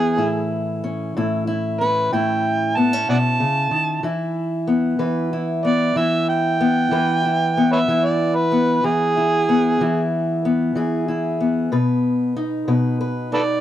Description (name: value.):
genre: acoustic country blues, solo or duo.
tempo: 62 BPM (dotted quarters).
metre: 12/8.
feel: straight.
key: E major.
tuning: A4 = 440 Hz.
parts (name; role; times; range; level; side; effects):
overdriven harmonica; melody; 0.0-13.6 s; G#4 to A5; -20 LUFS; right 2 dB; none.
fingerpicked steel-string acoustic guitar; accompaniment; 0.0-13.6 s; A2 to B4; -19 LUFS; left 1 dB; none.
room: studio reverb.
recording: dry, close 1970s-style studio recording.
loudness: -17 LUFS.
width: side -12 dB against mid.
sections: 0.0-13.6 A section.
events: harmonica solo 0.0-13.6.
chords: 0.2 A; 4.0 E; 11.7 B.